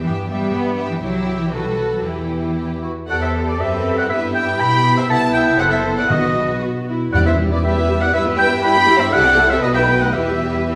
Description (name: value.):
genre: quick classical-period movement for symphony orchestra.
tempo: 113-123 BPM.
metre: 2/4.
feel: rubato.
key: E minor.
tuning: A4 = 439 Hz.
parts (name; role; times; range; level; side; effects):
warm symphonic violin section; melody; 0.0-10.8 s; B4 to G5; -29 LUFS; equal; none.
rich chamber violin section; second line; 0.0-10.8 s; F#4 to B5; -27 LUFS; equal; none.
clear symphonic viola section; accompaniment; 0.0-10.8 s; E3 to A4; -25 LUFS; equal; none.
rich chamber double bass section; bass; 0.0-10.8 s; F#1 to B2; -27 LUFS; equal; none.
warm studio cello section; bass; 0.0-10.8 s; D#3 to B4; -26 LUFS; equal; none.
warm oboe; second line; 3.1-10.8 s; D5 to B5; -20 LUFS; equal; none.
timpani; percussion; 6.1-7.9 s; E2 to B2; -24 LUFS; equal; none.
room: wet recital hall reverb, RT60 1.5 s.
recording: recorded in a church or concert hall.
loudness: -17 LUFS.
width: mono.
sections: 0.0-3.1 A section; 3.1-10.8 A section.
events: none.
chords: 0.0 Em/G; 1.0 C; 1.5 B7; 2.0 Em; 4.1 Em/G; 5.1 C; 5.6 F#dim; 6.1 B; 7.1 Em; 8.1 Em/G; 9.1 C; 9.6 B7; 10.1 Em.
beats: | 0.03 0.52 | 1.01 1.52 | 2.04 2.57 | 3.09 3.60 | 4.10 4.60 | 5.10 5.59 | 6.10 6.62 | 7.13 7.64 | 8.14 8.63 | 9.12 9.63 | 10.15 10.67.